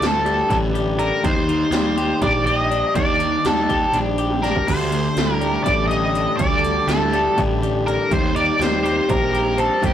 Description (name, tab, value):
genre	psychedelic rock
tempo	245 BPM (eighths)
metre	7/8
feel	straight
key	unclear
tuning	A4 = 440 Hz
part	octave-fuzz lead guitar	melody	0.0-9.9 s	G4 to Eb5	-21 LUFS	equal	distortion
part	twelve-string electric guitar	riff	0.0-9.9 s	D2 to G4	-22 LUFS	left 3 dB	none
part	fuzz picked electric bass	bass	0.0-9.9 s	A1 to Eb2	-24 LUFS	right 2 dB	overdrive
part	80s electronic pad drums	drums	0.0-9.9 s	crash cymbal, hi-hat, kick drum, snare drum, toms	-24 LUFS	right 1 dB	gated reverb on snare and toms, overdrive
part	string machine, violins	sustained chords	4.7-9.9 s	D3 to Bb4	-30 LUFS	right 3 dB	none
room	wet booth ambience, RT60 0.2 s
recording	rough rehearsal-room recording, tube saturation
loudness	-17 LUFS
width	side -10 dB against mid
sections	0.0-9.9 A section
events	drum fill 4.3-4.7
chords	0.0 Dsus4; 1.2 Ebmaj7; 4.7 Dsus4; 8.1 Eb6